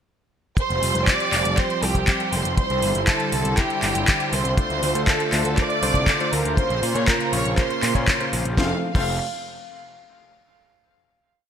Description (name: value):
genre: italo disco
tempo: 120 BPM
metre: 4/4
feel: straight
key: F major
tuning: A4 = 439 Hz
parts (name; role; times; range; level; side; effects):
- warm studio violin section; melody; 0.6-9.2 s; G4 to D6; -24 LUFS; right 2 dB; ping-pong delay
- warm analog pad; sustained chords; 0.6-8.8 s; Db3 to C5; -28 LUFS; right 1 dB; chorus
- house drum kit; drums; 0.6-9.1 s; crash cymbal, handclaps, hi-hat, snare drum; -24 LUFS; left 1 dB; overdrive, gated reverb
- kick drum; drums; 0.6-9.1 s; none; -21 LUFS; equal; none
- fuzz picked electric bass; bass; 0.7-9.2 s; F1 to Bb2; -27 LUFS; equal; overdrive
- bright electric grand piano; stabs; 4.6-9.1 s; A3 to F5; -30 LUFS; left 5 dB; none
room: light reverb, studio reverb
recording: bright 1980s-style digital production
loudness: -19 LUFS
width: side -8 dB against mid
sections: 0.6-8.6 chorus; 8.6-10.6 final chord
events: none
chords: 0.6 Fsus2; 2.6 Cadd9; 4.6 Dm7; 6.6 Bbmadd9; 8.6 F